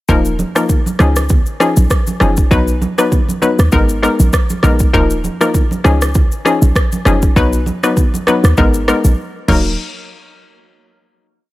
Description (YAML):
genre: afrobeats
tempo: 99 BPM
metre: 4/4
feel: swing 55% on 16ths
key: Eb minor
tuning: A4 = 439 Hz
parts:
  - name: hollow square pluck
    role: accompaniment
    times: 0.1-9.7 s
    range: F3 to B4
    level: -16 LUFS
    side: left 2 dB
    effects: chorus
  - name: short 808-style bass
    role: bass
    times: 0.1-9.8 s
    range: Eb1 to D#2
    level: -13 LUFS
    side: equal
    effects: none
  - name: afro-pop drum kit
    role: drums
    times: 0.1-9.6 s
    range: crash cymbal, kick drum, rim click, shaker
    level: -15 LUFS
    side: equal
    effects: none
  - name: congas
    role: percussion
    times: 0.4-9.8 s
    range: none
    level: -23 LUFS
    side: right 4 dB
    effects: none
room: little or no reverb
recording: none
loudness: -11 LUFS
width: side -17 dB against mid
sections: 0.1-9.8 verse; 9.8-11.5 final hit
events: break 9.2-9.8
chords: 0.1 Ebsus2; 1.0 Dbadd9; 2.5 B; 3.7 Abmadd9; 4.9 Ebsus2; 5.8 Dbadd9; 7.4 B; 8.6 Abmadd9; 9.5 Ebm; 9.8 N.C.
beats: | 0.09 0.69 1.30 1.91 | 2.51 3.12 3.73 4.33 | 4.94 5.54 6.15 6.75 | 7.36 7.97 8.57 9.18